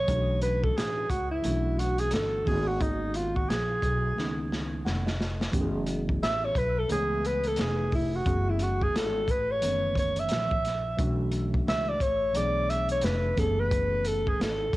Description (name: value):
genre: hip hop, jazz-hop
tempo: 88 BPM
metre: 4/4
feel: swing 61% on 16ths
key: F# dorian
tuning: A4 = 441 Hz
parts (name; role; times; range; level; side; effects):
- breathy alto saxophone; melody; 0.0-14.8 s; D#4 to E5; -28 LUFS; equal; cassette tape, analog delay
- upright bass; bass; 0.0-14.8 s; E#1 to C#2; -31 LUFS; equal; none
- tine electric piano; accompaniment; 0.1-14.5 s; D#3 to F#5; -34 LUFS; equal; medium stereo tremolo, cassette tape
- crunchy breakbeat drum kit; drums; 0.1-14.8 s; hi-hat, kick drum, snare drum; -32 LUFS; equal; none
room: little or no reverb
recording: home recording on cassette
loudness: -25 LUFS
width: side -18 dB against mid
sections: 0.0-14.8 A section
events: alto saxophone solo 0.0-14.8; drum fill 4.2-5.5; tine electric piano fill 4.5-5.5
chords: 0.1 Bm11; 2.5 G#m11; 5.5 F#m11; 11.0 Bm11; 13.4 F#m11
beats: | 0.08 0.76 1.45 2.13 | 2.81 3.49 4.17 4.85 | 5.54 6.22 6.90 7.58 | 8.26 8.95 9.63 10.31 | 10.99 11.67 12.35 13.04 | 13.72 14.40